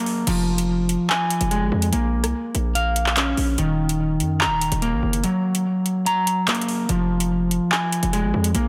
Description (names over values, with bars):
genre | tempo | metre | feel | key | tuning
hip hop, drill | 145 BPM | 4/4 | half-time | F phrygian | A4 = 440 Hz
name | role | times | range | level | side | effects
electric guitar at the edge of break-up | arpeggios | 0.0-8.7 s | Eb3 to Bb5 | -24 LUFS | equal | delay
drill drum kit | drums | 0.1-8.6 s | crash cymbal, handclaps, hi-hat, rim click | -27 LUFS | equal | none
distorted 808-style bass | bass | 0.3-8.7 s | Eb1 to Gb2 | -26 LUFS | equal | distortion
room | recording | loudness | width
light reverb, digital ambience | none | -21 LUFS | mono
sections
0.3-8.7 A section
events
break 0.0; kick muted 5.2-6.9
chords
0.3 Fm; 1.9 Bbm; 3.6 Ebm; 5.2 Gb; 6.9 Fm